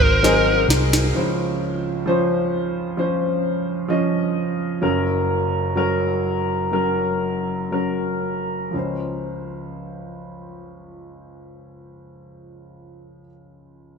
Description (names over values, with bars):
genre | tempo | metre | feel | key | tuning
pop ballad | 58-66 BPM | 4/4 | straight | Db major | A4 = 440 Hz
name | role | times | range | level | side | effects
bluesy overdriven lead guitar | melody | 0.0-0.7 s | C5 | -21 LUFS | right 1 dB | distortion
clear baby grand piano | accompaniment | 0.0-14.0 s | Gb1 to Eb5 | -21 LUFS | equal | lush chorus
fingered electric bass | bass | 0.0-1.1 s | Ab1 to C2 | -20 LUFS | equal | none
smooth R&B drum kit | drums | 0.0-1.1 s | snare drum, toms | -22 LUFS | right 1 dB | overdrive, gated reverb
room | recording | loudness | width
wet plate reverb, RT60 3.5 s | bright 1980s-style digital production | -19 LUFS | side -6 dB against mid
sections
0.0-1.1 A section; 1.1-8.7 B section; 8.7-12.8 C section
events
drum fill 0.2-1.1; slowing down 1.1-8.7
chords
0.0 Ab7; 1.1 Dbmaj7; 4.8 Gb; 8.7 Dbmaj7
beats
0.23 | 1.15 2.06 2.98 3.89 | 4.82 5.76 6.72 7.72 | 8.74 9.76 10.77 11.78